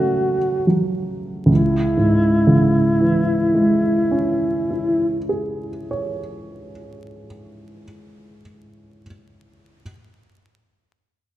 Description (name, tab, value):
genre	classical, romantic duo for alto saxophone and grand piano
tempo	39 BPM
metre	4/4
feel	rubato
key	C# minor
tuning	A4 = 445 Hz
part	clear alto saxophone	melody	0.0-5.2 s	E4 to F#4	-20 LUFS	equal	none
part	warm baby grand piano	accompaniment	0.0-9.8 s	C#2 to C#5	-18 LUFS	equal	none
room	moderate recital hall reverb, RT60 1.6 s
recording	dark, warm production, vinyl crackle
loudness	-16 LUFS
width	side -13 dB against mid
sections	0.0-1.5 A section; 1.5-7.6 B section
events	slowing down 0.0-1.5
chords	0.0 F#m/C#; 1.5 C#m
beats	| 1.49 3.04 4.58 6.09